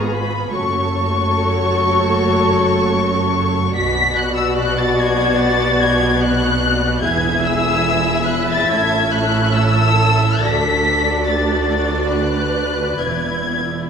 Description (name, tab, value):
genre	classical, slow romantic movement for string orchestra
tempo	73 BPM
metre	4/4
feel	uneven beats, rubato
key	unclear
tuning	A4 = 440 Hz
part	muted studio violin section	melody	0.0-13.9 s	Bb5 to B6	-19 LUFS	left 3 dB	none
part	muted studio violin section	second line	0.0-13.9 s	F#4 to E5	-21 LUFS	left 2 dB	none
part	muted studio viola section	accompaniment	0.0-13.9 s	A3 to F#4	-22 LUFS	right 1 dB	none
part	muted studio cello section	bass	0.0-13.9 s	D2 to B2	-23 LUFS	right 3 dB	none
part	muted studio double bass section	bass	0.0-13.9 s	E1 to D2	-22 LUFS	right 2 dB	none
room	wet scoring stage reverb, RT60 1.9 s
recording	minimal, uncompressed stereo recording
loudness	-14 LUFS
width	side -6 dB against mid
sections	0.0-13.9 A section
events	none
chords	0.0 Fdim/Ab; 0.5 F#m; 3.8 Bm; 7.0 E; 8.7 A; 10.4 D; 13.0 E7